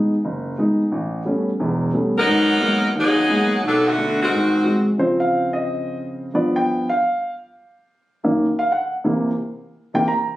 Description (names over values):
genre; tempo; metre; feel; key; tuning
jazz; 177 BPM; 4/4; swing 63% on 8ths; Db major from 5.0 s; A4 = 440 Hz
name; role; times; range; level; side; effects
warm upright piano; accompaniment; 0.0-10.3 s; E1 to Bb5; -18 LUFS; equal; none
bright saxophone section; melody; 2.2-4.8 s; D3 to A#4; -18 LUFS; equal; none
room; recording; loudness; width
moderate large studio reverb, RT60 1.1 s; recorded on a phone in the room, studio reverb, compression; -17 LUFS; side -15 dB against mid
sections
0.0-5.0 A section; 5.0-10.4 B section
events
upright piano solo 5.0-10.4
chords
0.0 B6; 0.9 A9; 2.3 G#m9; 3.6 Bm7; 4.3 G#7; 5.0 Dbmaj7; 6.3 G7; 7.7 Gb6; 9.1 C7